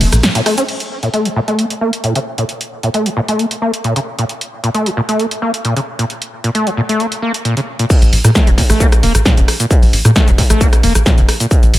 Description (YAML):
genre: driving peak-time techno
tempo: 133 BPM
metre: 4/4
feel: straight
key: Bb harmonic minor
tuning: A4 = 435 Hz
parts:
  - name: overdriven acid bass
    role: riff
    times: 0.0-11.5 s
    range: Bb1 to Db4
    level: -16 LUFS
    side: equal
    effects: wide subtle chorus, vintage 12-bit sampler grit, sidechain pumping, dub echo
  - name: tight sequencer bass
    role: bass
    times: 0.0-0.2, 8.0-11.8 s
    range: F1 to Bb2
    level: -13 LUFS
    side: equal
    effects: sidechain pumping
  - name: punchy analog drum machine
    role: drums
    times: 0.0-11.8 s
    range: crash cymbal, hi-hat, ride cymbal, rim click, shaker, snare drum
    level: -18 LUFS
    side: equal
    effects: none
  - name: electronic kick drum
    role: drums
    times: 7.9-11.6 s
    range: none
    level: -11 LUFS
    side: equal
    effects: distortion
room: light reverb, digital ambience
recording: none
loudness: -12 LUFS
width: side -15 dB against mid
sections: 0.7-7.9 A section; 7.9-11.8 B section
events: band accent 0.2; filter sweep on acid bass 0.7-7.9; drop 7.9-11.8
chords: 0.0 Bb5; 0.7 N.C.; 7.9 Bb5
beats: 0.23 | 0.68 1.14 1.59 2.04 | 2.49 2.94 3.39 3.84 | 4.29 4.74 5.20 5.65 | 6.10 6.55 7.00 7.45 | 7.90 8.35 8.80 9.26 | 9.71 10.16 10.61 11.06 | 11.51